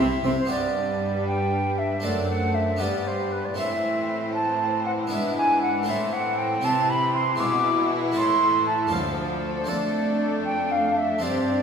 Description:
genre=classical, baroque-style concerto movement with solo episodes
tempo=78 BPM (dotted quarters)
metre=6/8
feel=straight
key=G major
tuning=A4 = 440 Hz
part: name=rich chamber violin section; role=melody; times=0.0-11.6 s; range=G4 to E5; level=-36 LUFS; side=left 6 dB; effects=none
part: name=silver concert flute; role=melody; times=0.0-11.6 s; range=B4 to D6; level=-24 LUFS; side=right 1 dB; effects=none
part: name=rich studio violin section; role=second line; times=0.0-11.6 s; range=C4 to E4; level=-33 LUFS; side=left 2 dB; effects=none
part: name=harpsichord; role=accompaniment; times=0.0-11.6 s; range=D2 to A4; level=-32 LUFS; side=equal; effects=none
part: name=warm studio viola section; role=accompaniment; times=0.0-11.6 s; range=E3 to C4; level=-29 LUFS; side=equal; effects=none
part: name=rich studio cello section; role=bass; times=0.0-11.6 s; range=D2 to C3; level=-30 LUFS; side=right 3 dB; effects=none
room=wet recital hall reverb, RT60 1.7 s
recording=recorded in a church or concert hall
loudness=-21 LUFS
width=side -6 dB against mid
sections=0.5-11.6 A section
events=none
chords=0.0 C; 0.5 G; 2.0 D7/F#; 2.8 G; 3.6 Am; 5.1 E7/G#; 5.9 Am; 6.6 C; 7.4 E7/B; 8.2 Am; 8.9 Dm; 9.7 Dm/F

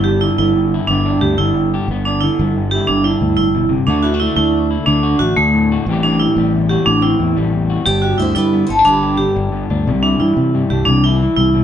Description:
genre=highlife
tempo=120 BPM (dotted quarters)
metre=12/8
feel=straight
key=G major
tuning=A4 = 438 Hz
part: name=electric guitar at the edge of break-up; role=accompaniment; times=0.0-11.6 s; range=E2 to G4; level=-18 LUFS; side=left 4 dB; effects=none
part: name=vibraphone with hard mallets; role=arpeggios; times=0.0-11.6 s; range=A3 to G4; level=-16 LUFS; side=right 4 dB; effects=none
part: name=fingered electric bass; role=bass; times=0.0-11.6 s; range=G1 to C3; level=-18 LUFS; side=equal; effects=none
part: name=picked swing-style acoustic guitar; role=melody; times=7.9-9.5 s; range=G4 to G5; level=-16 LUFS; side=left 2 dB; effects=none
room=moderate stone room reverb, RT60 0.9 s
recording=band playing live in one room, nothing above 11.0 kHz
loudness=-13 LUFS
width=side -9 dB against mid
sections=0.0-7.9 A section; 7.9-11.6 B section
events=none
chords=0.0 G6; 3.9 D; 5.9 Am7; 7.9 G; 9.9 Cadd9

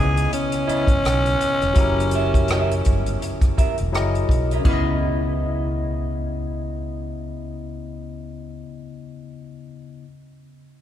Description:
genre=R&B, neo-soul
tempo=83 BPM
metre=4/4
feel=swing 60% on 16ths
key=C# dorian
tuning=A4 = 439 Hz
part: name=growling tenor saxophone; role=melody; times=0.0-3.9 s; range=C#4 to G#4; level=-23 LUFS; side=equal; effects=none
part: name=barky tine electric piano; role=accompaniment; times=0.0-10.1 s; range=C#3 to D#5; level=-28 LUFS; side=left 5 dB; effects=none
part: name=mellow fretless electric bass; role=bass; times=0.0-8.6 s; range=E1 to C#2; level=-25 LUFS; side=equal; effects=none
part: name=warm soul drum kit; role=drums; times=0.2-4.9 s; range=hi-hat, kick drum, rim click, splash cymbal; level=-22 LUFS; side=equal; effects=none
part: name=electric guitar through a small old amp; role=second line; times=0.3-8.7 s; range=E4 to E5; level=-30 LUFS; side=right 3 dB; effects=warbly pitch drift
room=moderate cathedral reverb, RT60 5.3 s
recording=recorded in a church or concert hall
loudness=-18 LUFS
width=side -11 dB against mid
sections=0.0-4.7 A section; 4.7-7.5 B section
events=none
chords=0.0 C#m9; 1.8 F#7b9; 3.9 F#13; 4.7 C#m9

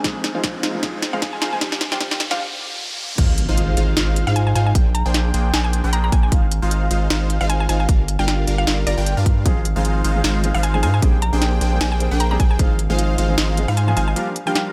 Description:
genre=future bass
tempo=153 BPM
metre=4/4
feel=swing 55% on 16ths, half-time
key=Ab lydian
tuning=A4 = 441 Hz
part: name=felt-muted upright piano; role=accompaniment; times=0.0-2.4, 9.4-14.7 s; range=F3 to Ab4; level=-30 LUFS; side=equal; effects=sidechain pumping
part: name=shimmering ambient pad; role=sustained chords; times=0.0-3.2 s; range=D3 to G4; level=-39 LUFS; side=equal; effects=none
part: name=supersaw stab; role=riff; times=0.0-14.7 s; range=G3 to Bb5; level=-29 LUFS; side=equal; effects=phaser, sidechain pumping, low-pass filter
part: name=electronic kick drum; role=drums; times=0.0-12.7 s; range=none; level=-19 LUFS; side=equal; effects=none
part: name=trap drum kit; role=drums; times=0.0-14.6 s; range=crash cymbal, hi-hat, snare drum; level=-26 LUFS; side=equal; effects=none
part: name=riser and impact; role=sound effects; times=0.0-4.8 s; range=none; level=-30 LUFS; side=equal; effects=none
part: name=mallet-like synth pluck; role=melody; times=1.1-14.6 s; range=D5 to Bb5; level=-29 LUFS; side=equal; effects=chorus, sidechain pumping, tape echo
part: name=airy dreamy lead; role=arpeggios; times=3.2-14.7 s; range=F5 to Bb5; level=-34 LUFS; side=equal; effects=chorus, sidechain pumping
part: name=saturated sub bass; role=bass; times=3.2-14.1 s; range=G1 to Ab2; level=-22 LUFS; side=equal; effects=sidechain pumping
room=light reverb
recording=high-pass filter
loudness=-19 LUFS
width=mono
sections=0.0-3.2 A section; 3.2-14.7 B section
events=build-up 0.0-3.2; drum fill 0.0-2.4; riser 0.0-3.2; filter sweep on supersaw synth 0.0-3.2; filter sweep on synth pluck 0.0-3.2; filter sweep 0.0-3.2; break 2.4-3.2, 14.2-14.7; drop 3.2-14.7; impact 3.2-4.8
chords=0.0 Ab6; 1.6 Gm7; 3.2 Ab6; 4.8 Bb13; 6.3 Ab6; 7.9 Gm7; 9.5 Ab6; 11.0 Bb13; 12.6 Ab6; 14.2 Gm7

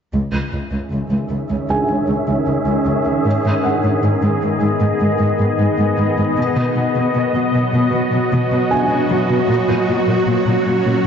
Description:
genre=cinematic, hybrid orchestral and electronic film score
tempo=77 BPM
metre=4/4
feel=straight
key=C# minor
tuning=A4 = 440 Hz
part: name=swarming drone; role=sustained chords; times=1.0-11.1 s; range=D#3 to E5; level=-17 LUFS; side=equal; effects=built-in reverb, low-pass filter
part: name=dark symphonic cello section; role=bass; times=0.1-11.1 s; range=C#2 to B2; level=-19 LUFS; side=equal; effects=none
part: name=felt-muted upright piano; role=texture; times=1.7-11.1 s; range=G#4 to G#5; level=-24 LUFS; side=right 2 dB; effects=ping-pong delay
room=wet scoring stage reverb, RT60 1.7 s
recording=nothing above 7.6 kHz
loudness=-15 LUFS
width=side -7 dB against mid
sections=0.1-11.1 A section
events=filter sweep on synth drone 0.1-11.1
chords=0.1 C#madd9; 3.3 G#m; 6.4 B; 9.5 F#/A#

